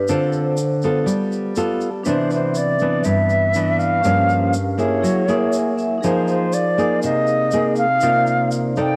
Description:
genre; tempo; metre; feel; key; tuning
bossa nova; 121 BPM; 4/4; straight; unclear; A4 = 441 Hz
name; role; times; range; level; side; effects
nylon-string guitar; accompaniment; 0.0-9.0 s; G2 to D5; -21 LUFS; equal; cassette tape
vibraphone with medium hard mallets; accompaniment; 0.0-9.0 s; C4 to G#5; -28 LUFS; equal; cassette tape
tube shaker; percussion; 0.1-9.0 s; none; -40 LUFS; equal; none
silver concert flute; melody; 2.1-9.0 s; C5 to G5; -22 LUFS; equal; cassette tape
room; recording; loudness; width
light reverb; home recording on cassette; -19 LUFS; mono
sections
0.0-2.1 A section; 2.1-9.0 B section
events
vibraphone solo 0.0-2.1; vibraphone fill 5.3-6.0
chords
0.1 Dm7; 1.1 G9; 2.1 Cmaj9; 4.0 Gm7b5; 5.0 F#9; 6.0 Fm7; 8.0 Cm11

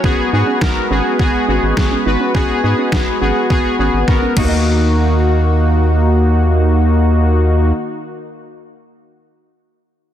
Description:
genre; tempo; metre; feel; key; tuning
synth-pop; 104 BPM; 4/4; straight; Eb minor; A4 = 440 Hz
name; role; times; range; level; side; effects
analog synth brass; accompaniment; 0.0-7.7 s; Bb3 to Cb5; -17 LUFS; left 1 dB; chorus
chorused pulse-width pad; sustained chords; 0.0-7.7 s; Eb3 to Cb5; -23 LUFS; right 1 dB; none
soft round pluck; arpeggios; 0.0-8.5 s; Db4 to Eb5; -26 LUFS; right 6 dB; chorus, tape echo
round analog bass; bass; 0.0-7.7 s; Ab1 to Ab2; -14 LUFS; equal; none
detuned 8-bit digital drum machine; drums; 0.0-4.5 s; crash cymbal, kick drum, snare drum; -18 LUFS; equal; none
room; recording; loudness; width
light reverb, digital ambience; dense, heavily limited modern master; -12 LUFS; side -10 dB against mid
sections
0.0-4.7 A section; 4.7-7.0 B section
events
drum fill 4.1-4.7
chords
0.0 Abm7; 4.4 Ebm

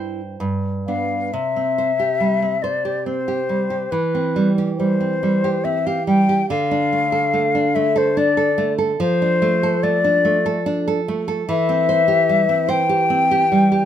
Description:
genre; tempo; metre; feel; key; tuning
romantic duo for flute and classical guitar; 71 BPM; 3/4; uneven beats, rubato; C major; A4 = 438 Hz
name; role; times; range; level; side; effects
nylon-string guitar; accompaniment; 0.0-13.9 s; G2 to G5; -19 LUFS; right 3 dB; none
mellow hollow concert flute; melody; 0.9-13.9 s; B4 to G5; -18 LUFS; left 4 dB; none
room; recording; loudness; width
light reverb; minimal, uncompressed stereo recording; -16 LUFS; side -10 dB against mid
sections
0.0-1.3 A section; 1.3-13.9 B section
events
none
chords
0.4 G; 1.3 C; 3.9 C/E; 6.5 Dm; 9.0 Dm/F; 11.5 C/E

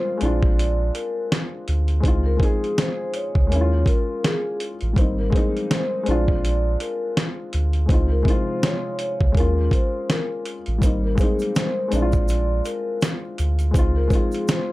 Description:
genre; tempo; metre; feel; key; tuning
lo-fi hip hop; 82 BPM; 4/4; swing 58% on 16ths; unclear; A4 = 440 Hz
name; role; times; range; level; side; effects
vibraphone with soft mallets; melody; 0.0-14.7 s; Ab4 to D5; -27 LUFS; equal; plate reverb
dark upright piano; accompaniment; 0.0-14.7 s; C3 to Bb4; -26 LUFS; left 2 dB; plate reverb
warm sub bass; bass; 0.2-14.1 s; Ab1 to Eb2; -21 LUFS; equal; none
dusty soul sampler-style drum kit; drums; 0.2-14.7 s; hi-hat, kick drum, snare drum; -21 LUFS; equal; none
egg shaker; percussion; 10.8-14.7 s; none; -43 LUFS; right 5 dB; none
room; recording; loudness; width
moderate small room reverb, RT60 0.5 s; dark, warm production; -19 LUFS; side -18 dB against mid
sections
0.0-14.7 A section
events
none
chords
0.2 Bb7; 2.0 Dbmaj7; 3.5 Eb9sus4; 5.0 Abmaj9; 6.1 Bb7; 7.9 Dbmaj7; 9.4 Eb9sus4; 10.8 Abmaj9; 11.9 Bb7; 13.7 Dbmaj7

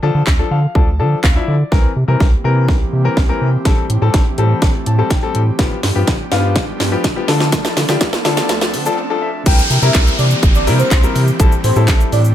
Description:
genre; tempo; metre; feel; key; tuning
dance-pop; 124 BPM; 4/4; straight; unclear; A4 = 440 Hz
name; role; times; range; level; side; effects
clear grand piano; accompaniment; 0.0-12.2 s; E3 to A5; -20 LUFS; left 5 dB; sidechain pumping
round analog bass; bass; 0.0-12.3 s; G1 to D3; -16 LUFS; equal; sidechain pumping
house drum kit; drums; 0.3-12.3 s; crash cymbal, handclaps, hi-hat, kick drum, shaker, snare drum; -15 LUFS; equal; none
airy breathy pad; sustained chords; 1.7-12.3 s; E3 to A4; -24 LUFS; right 1 dB; chorus, sidechain pumping
riser and downlifter; sound effects; 4.8-12.3 s; none; -24 LUFS; right 1 dB; none
airy dreamy lead; melody; 9.5-12.2 s; C5 to G5; -21 LUFS; equal; chorus, sidechain pumping
room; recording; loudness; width
digital ambience; high-pass filter; -12 LUFS; side -11 dB against mid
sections
0.0-1.7 A section; 1.7-9.5 B section; 9.5-12.3 C section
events
grand piano fill 0.3-1.7, 4.6-5.6, 8.7-9.5; build-up 1.7-9.5; drum fill 1.7-9.0; filter sweep 1.7-9.5; riser 4.8-9.5; break 9.0-9.5; drop 9.5-12.3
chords
0.0 Dm; 1.7 C7; 3.7 Am7; 5.6 G7; 7.3 Dm; 9.5 C7; 11.4 Am7

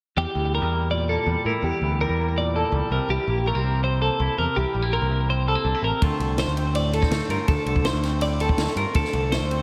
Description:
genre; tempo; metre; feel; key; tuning
math rock and midwest emo; 164 BPM; 4/4; straight; unclear; A4 = 440 Hz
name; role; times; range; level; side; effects
twangy electric guitar; accompaniment; 0.2-9.6 s; D2 to F4; -31 LUFS; equal; slapback echo
twelve-string electric guitar; arpeggios; 0.2-9.6 s; G4 to D5; -28 LUFS; equal; tremolo, digital delay, slapback echo
picked electric bass; bass; 0.2-9.6 s; A1 to A2; -27 LUFS; equal; none
compact cocktail drum kit; drums; 6.0-9.6 s; kick drum, ride cymbal, snare drum; -28 LUFS; equal; none
room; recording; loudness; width
moderate lush hall reverb, RT60 2.0 s; big arena sound; -23 LUFS; mono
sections
0.2-9.6 A section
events
none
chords
0.2 Em7b5; 2.9 C7; 6.0 Dm7

